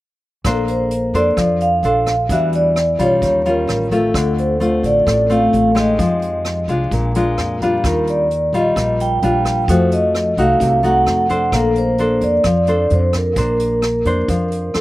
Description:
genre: bossa nova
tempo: 130 BPM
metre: 4/4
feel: straight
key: Bb major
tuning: A4 = 440 Hz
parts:
  - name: upright bass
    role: bass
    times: 0.4-14.8 s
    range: A1 to F2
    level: -21 LUFS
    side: equal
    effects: none
  - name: vintage brush drum kit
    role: drums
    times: 0.4-14.8 s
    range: hi-hat, kick drum, rim click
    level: -26 LUFS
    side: right 1 dB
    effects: none
  - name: vibraphone with soft mallets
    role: melody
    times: 0.5-14.7 s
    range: A4 to G5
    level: -17 LUFS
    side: right 1 dB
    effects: slapback echo
  - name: nylon-string guitar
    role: accompaniment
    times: 0.5-14.8 s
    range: A2 to C5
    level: -18 LUFS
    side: left 2 dB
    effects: none
room: little or no reverb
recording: recorded outdoors, with no room sound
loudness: -14 LUFS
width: side -16 dB against mid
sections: 0.5-14.8 A section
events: none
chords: 0.5 Bbmaj9; 2.3 Em9; 3.2 Eb9; 4.1 Dm7; 6.0 Fm9; 6.9 Bb7; 7.8 Ebmaj9; 9.7 F7b9; 11.5 Bbmaj9

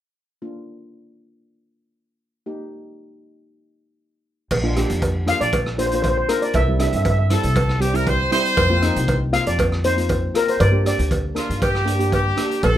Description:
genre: calypso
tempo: 118 BPM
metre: 4/4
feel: straight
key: Bb major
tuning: A4 = 438 Hz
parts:
  - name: steel pan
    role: accompaniment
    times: 0.4-12.6 s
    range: G3 to Bb4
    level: -26 LUFS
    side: right 1 dB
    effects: none
  - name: upright bass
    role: bass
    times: 4.5-12.8 s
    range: Bb1 to G2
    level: -21 LUFS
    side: equal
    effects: none
  - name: raw garage drum kit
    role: drums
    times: 4.5-12.8 s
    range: crash cymbal, hi-hat, kick drum, rim click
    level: -26 LUFS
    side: equal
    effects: none
  - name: cowbell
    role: percussion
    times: 4.5-12.8 s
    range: none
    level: -24 LUFS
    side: right 2 dB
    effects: none
  - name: steel pan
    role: melody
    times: 5.3-11.3 s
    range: Bb4 to F5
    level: -21 LUFS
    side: left 1 dB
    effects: none
  - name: bright horn section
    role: second line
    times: 7.3-12.8 s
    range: F4 to C5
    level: -22 LUFS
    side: equal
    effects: none
room: little or no reverb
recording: rough home demo mix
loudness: -17 LUFS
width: side -12 dB against mid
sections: 0.4-4.5 A section; 4.5-12.8 B section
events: none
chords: 0.4 Bb; 2.5 Eb; 4.5 Bb; 6.5 C; 8.6 F7sus4; 10.6 Gm

